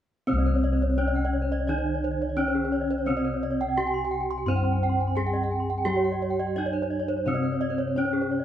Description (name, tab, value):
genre	Balinese gamelan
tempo	86 BPM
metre	4/4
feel	straight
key	C pelog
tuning	A4 = 440 Hz
part	gamelan-type bronze metallophone	melody	0.3-8.4 s	C4 to C5	-28 LUFS	equal	none
part	gamelan-type bronze metallophone	accompaniment	0.3-8.4 s	C3 to C4	-36 LUFS	right 2 dB	none
part	gamelan-type bronze metallophone	arpeggios	0.3-8.4 s	Ab4-40c to C6	-33 LUFS	left 4 dB	none
part	gamelan-type bossed gongs	bass	0.3-8.4 s	C2 to G4-45c	-29 LUFS	left 1 dB	none
part	gamelan-type bronze metallophone	arpeggios	0.4-8.3 s	C5 to C6	-32 LUFS	right 4 dB	none
room	moderate studio reverb, RT60 0.8 s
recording	band playing live in one room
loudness	-24 LUFS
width	side -10 dB against mid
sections	0.3-8.4 A section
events	none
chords	none